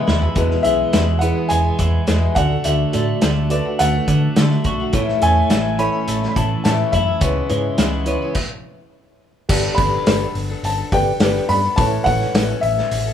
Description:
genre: folk rock and heartland rock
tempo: 105 BPM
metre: 4/4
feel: straight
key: E mixolydian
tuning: A4 = 440 Hz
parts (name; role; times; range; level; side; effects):
- picked acoustic archtop guitar; accompaniment; 0.0-13.1 s; E2 to A4; -26 LUFS; left 8 dB; none
- twelve-string electric guitar; riff; 0.0-8.4 s; E2 to F#4; -24 LUFS; right 4 dB; none
- hollow-body short-scale picked electric bass; bass; 0.1-13.1 s; E1 to D3; -21 LUFS; equal; none
- vintage drum kit; drums; 0.1-13.0 s; crash cymbal, hi-hat, kick drum, snare drum, toms; -21 LUFS; left 1 dB; none
- reed electric piano; accompaniment; 0.4-12.6 s; E4 to D5; -25 LUFS; right 2 dB; overdrive, fast tremolo
- warm baby grand piano; melody; 0.6-13.1 s; D5 to B5; -21 LUFS; left 2 dB; none
room: small room ambience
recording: rough home demo mix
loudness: -15 LUFS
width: side -9 dB against mid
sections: 0.4-9.5 A section; 9.5-13.1 B section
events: drum fill 0.0-0.4; stop 8.4-9.5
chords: 0.4 E; 2.4 D; 4.9 A; 7.2 C#m7; 8.4 N.C.; 9.5 Gadd9; 11.8 Aadd9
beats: | 0.36 0.93 1.50 2.08 | 2.65 3.22 3.79 4.36 | 4.93 5.50 6.08 6.65 | 7.22 7.79 8.36 8.93 | 9.50 10.07 10.64 11.21 | 11.77 12.34 12.91

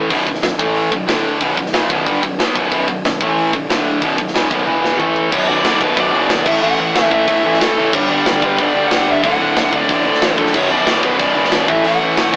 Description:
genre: heavy metal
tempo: 184 BPM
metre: 4/4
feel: straight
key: B minor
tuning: A4 = 440 Hz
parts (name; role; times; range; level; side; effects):
- high-gain distorted guitar; riff; 0.0-12.4 s; B1 to B3; -19 LUFS; equal; distortion
- tight distorted guitar; riff; 0.0-12.4 s; B1 to B3; -18 LUFS; equal; distortion
- fuzz picked electric bass; bass; 0.0-12.4 s; B0 to D2; -24 LUFS; equal; overdrive
- tight metal drum kit; drums; 0.1-12.4 s; crash cymbal, hi-hat, kick drum, snare drum, splash cymbal, toms; -19 LUFS; equal; none
- high-gain lead guitar; melody; 5.0-12.4 s; A4 to F#5; -18 LUFS; equal; distortion, digital delay
- distorted electric guitar; riff; 5.3-12.4 s; B1 to A3; -23 LUFS; equal; none
room: moderate studio reverb, RT60 0.6 s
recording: rough rehearsal-room recording, tube saturation, AM radio sound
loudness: -12 LUFS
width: side -37 dB against mid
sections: 0.0-5.3 A section; 5.3-12.4 B section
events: drum fill 4.7-5.3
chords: 0.1 B5; 0.6 A5; 0.9 B5; 1.1 D5; 1.4 Bm; 3.2 A5; 3.5 B5; 3.7 D5; 4.0 B5; 4.7 E5; 5.0 A5; 5.3 Bm; 6.5 A5; 7.9 G5; 9.2 D; 10.5 Bm; 11.7 A5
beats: | 0.11 0.43 0.76 1.08 | 1.41 1.74 2.06 2.39 | 2.71 3.04 3.36 3.69 | 4.02 4.34 4.67 5.00 | 5.32 5.65 5.97 6.30 | 6.63 6.95 7.28 7.61 | 7.93 8.26 8.59 8.91 | 9.24 9.57 9.89 10.22 | 10.55 10.88 11.20 11.53 | 11.85 12.18

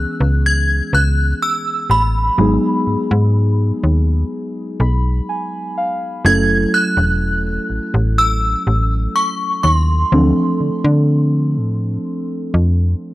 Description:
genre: contemporary R&B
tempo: 62 BPM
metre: 4/4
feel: straight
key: C# minor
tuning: A4 = 440 Hz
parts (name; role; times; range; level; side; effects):
- synth chime; melody; 0.0-12.5 s; B5 to G#6; -18 LUFS; equal; ensemble chorus, phaser, tremolo, cassette tape
- muted felt-like synth keys; accompaniment; 0.0-13.1 s; E3 to B5; -20 LUFS; equal; chorus, cassette tape
- slap-like FM bass; bass; 0.0-12.9 s; E1 to D3; -15 LUFS; equal; none
room: little or no reverb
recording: home recording on cassette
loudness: -14 LUFS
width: side -17 dB against mid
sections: 0.0-13.1 A section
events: synth keys fill 4.3-6.2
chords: 0.0 C#m7; 2.4 G#m7; 6.2 F#m7; 10.1 Dm7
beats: 0.44 1.41 | 2.38 3.35 4.32 5.28 | 6.25 7.22 8.19 9.15 | 10.12 11.09 12.06 13.02

